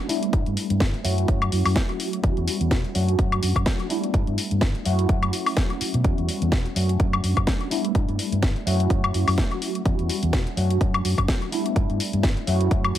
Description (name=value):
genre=filtered disco house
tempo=126 BPM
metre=4/4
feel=swing 56% on 16ths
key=unclear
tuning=A4 = 440 Hz
part: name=mellow tine electric piano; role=accompaniment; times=0.0-13.0 s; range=F#3 to F#4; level=-27 LUFS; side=equal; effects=medium stereo tremolo, phaser, sidechain pumping, low-pass filter, analog delay
part: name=house drum kit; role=drums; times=0.1-13.0 s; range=hi-hat, snare drum, woodblock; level=-27 LUFS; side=left 2 dB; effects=analog delay
part: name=fingered electric bass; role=bass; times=0.3-13.0 s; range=E1 to B2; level=-24 LUFS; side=equal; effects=tube saturation, sidechain pumping, low-pass filter
part: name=electronic kick drum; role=drums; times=0.3-12.8 s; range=none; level=-23 LUFS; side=equal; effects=none
room=little or no reverb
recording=echo-heavy mix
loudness=-20 LUFS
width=side -12 dB against mid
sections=0.0-13.0 A section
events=filter sweep 0.0-13.0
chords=0.1 G69; 1.0 F#m7; 2.2 Em69; 3.0 Dmaj7/F#; 3.9 G69; 4.9 F#m7; 6.0 Em69; 6.8 Dmaj7/F#; 7.7 G69; 8.7 F#m7; 9.9 Em69; 10.6 Dmaj7/F#; 11.5 G69; 12.5 F#m7